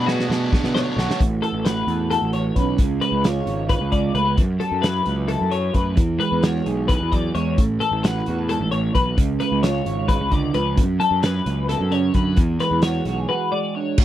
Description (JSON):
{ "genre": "math rock and midwest emo", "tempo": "263 BPM (eighths)", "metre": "7/8", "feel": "straight", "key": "A major", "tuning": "A4 = 440 Hz", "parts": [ { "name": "electric guitar through a small old amp", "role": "accompaniment", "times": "0.0-14.0 s", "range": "F#2 to C#5", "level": "-25 LUFS", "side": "right 7 dB", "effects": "lush chorus" }, { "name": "twelve-string electric guitar", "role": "arpeggios", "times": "0.0-14.0 s", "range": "F#4 to D5", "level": "-24 LUFS", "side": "left 6 dB", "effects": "analog chorus" }, { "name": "biting overdriven guitar", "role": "riff", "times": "0.0-1.2 s", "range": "B2 to D4", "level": "-26 LUFS", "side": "right 1 dB", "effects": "none" }, { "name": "fuzz picked electric bass", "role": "bass", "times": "0.0-14.0 s", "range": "G#1 to B2", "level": "-23 LUFS", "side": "equal", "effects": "overdrive" }, { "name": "loose indie drum kit", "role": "drums", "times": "0.1-14.0 s", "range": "crash cymbal, hi-hat, kick drum, snare drum", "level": "-20 LUFS", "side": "equal", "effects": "none" } ], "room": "little or no reverb", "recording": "dry, close 1970s-style studio recording", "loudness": "-18 LUFS", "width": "side -12 dB against mid", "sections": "0.0-1.2 A section; 1.2-14.0 B section", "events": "drum fill 0.0-1.2; break 13.3-14.0", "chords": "0.0 Bm9; 1.2 A6; 2.8 C#7b9; 4.4 F#m7; 6.0 E9; 7.6 A6; 9.2 C#7b9; 10.8 F#m7; 12.4 E9" }